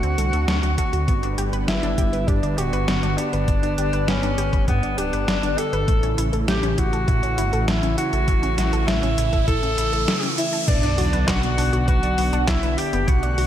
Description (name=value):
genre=synthwave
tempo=100 BPM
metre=4/4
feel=straight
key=B minor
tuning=A4 = 442 Hz
part: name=breathy tenor saxophone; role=melody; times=0.0-13.5 s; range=B3 to A4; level=-25 LUFS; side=equal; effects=ping-pong delay, slapback echo
part: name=warm analog pad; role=sustained chords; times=0.0-13.5 s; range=C#3 to B4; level=-29 LUFS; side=right 1 dB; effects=chorus, sidechain pumping
part: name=wide unison pluck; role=arpeggios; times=0.0-13.4 s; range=A3 to D5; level=-31 LUFS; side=left 1 dB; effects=cassette tape, tape echo, slapback echo
part: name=dark detuned saw bass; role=bass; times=0.0-13.5 s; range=D1 to A2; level=-23 LUFS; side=equal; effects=tube saturation
part: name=detuned 8-bit digital drum machine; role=drums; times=0.0-13.5 s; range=crash cymbal, handclaps, hi-hat, snare drum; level=-27 LUFS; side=left 1 dB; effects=none
part: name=electronic kick drum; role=drums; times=0.8-13.2 s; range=none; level=-21 LUFS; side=equal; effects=none
part: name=riser and sub drop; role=sound effects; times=7.9-13.1 s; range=none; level=-30 LUFS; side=equal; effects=none
part: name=airy dreamy lead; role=second line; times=10.7-13.5 s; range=D5 to G5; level=-29 LUFS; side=equal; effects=chorus, cassette tape, slapback echo
room=moderate lush hall reverb, RT60 1.8 s, digital ambience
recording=big arena sound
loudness=-18 LUFS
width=side -11 dB against mid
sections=0.0-10.7 A section; 10.7-13.5 B section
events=riser 7.9-10.7; impact 10.7-13.1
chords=0.0 D7; 1.1 G; 5.9 A; 10.7 Bm